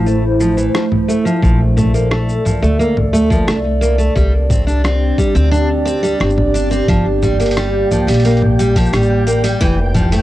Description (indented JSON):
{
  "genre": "folktronica",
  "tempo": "88 BPM",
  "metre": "4/4",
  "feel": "straight",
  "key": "G dorian",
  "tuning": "A4 = 440 Hz",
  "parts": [
    { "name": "warbly tape-like pad", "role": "sustained chords", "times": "0.0-10.2 s", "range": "A3 to D5", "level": "-18 LUFS", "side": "right 1 dB", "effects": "chorus, built-in reverb, cassette tape" },
    { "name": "picked steel-string acoustic guitar", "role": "arpeggios", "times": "0.0-10.2 s", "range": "E3 to D4", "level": "-18 LUFS", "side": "equal", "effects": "low-pass filter, cassette tape, tape echo" },
    { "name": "upright bass", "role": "bass", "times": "0.0-10.2 s", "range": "F1 to D2", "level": "-16 LUFS", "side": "equal", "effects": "tube saturation" },
    { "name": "lo-fi sampler-style drum kit", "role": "drums", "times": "0.1-10.2 s", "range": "congas, hi-hat, rim click, shaker", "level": "-21 LUFS", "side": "left 1 dB", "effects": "overdrive" },
    { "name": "electronic kick drum", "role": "drums", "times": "1.4-10.1 s", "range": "none", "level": "-17 LUFS", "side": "equal", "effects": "overdrive" },
    { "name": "flickering grainy texture", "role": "texture", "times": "7.1-10.2 s", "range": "G5", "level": "-27 LUFS", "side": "equal", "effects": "built-in reverb, cassette tape" }
  ],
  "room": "light reverb",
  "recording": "home recording on cassette",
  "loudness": "-12 LUFS",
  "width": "side -15 dB against mid",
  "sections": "0.0-10.2 A section",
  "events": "none",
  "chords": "0.0 Fmaj7; 1.4 Bbmaj7; 4.2 Csus2; 6.9 Gm7; 9.6 Fmaj7",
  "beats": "0.06 0.74 | 1.43 2.11 2.79 3.47 | 4.15 4.83 5.52 6.20 | 6.88 7.56 8.24 8.93 | 9.61"
}